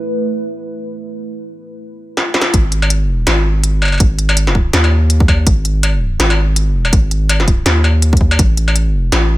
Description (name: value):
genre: half-time drum and bass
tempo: 164 BPM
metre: 4/4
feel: swing 57% on 16ths, half-time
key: G# phrygian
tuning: A4 = 441 Hz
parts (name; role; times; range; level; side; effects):
- dark analog pad; sustained chords; 0.0-2.5 s; A3 to B4; -23 LUFS; right 2 dB; chorus, phaser, sidechain pumping
- industrial drum kit; drums; 2.2-9.2 s; hi-hat, snare drum, struck metal; -16 LUFS; left 1 dB; studio ambience
- long sustained 808-style bass; bass; 2.5-9.4 s; G#1 to D#2; -13 LUFS; equal; none
- electronic kick drum; drums; 2.5-8.5 s; none; -12 LUFS; equal; overdrive, studio ambience
room: little or no reverb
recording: none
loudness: -11 LUFS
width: side -17 dB against mid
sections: 0.0-2.5 A section; 2.5-9.4 B section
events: drum fill 2.2-2.5; drop 2.5-9.4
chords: 0.0 Asus2; 2.5 G#5; 8.4 A5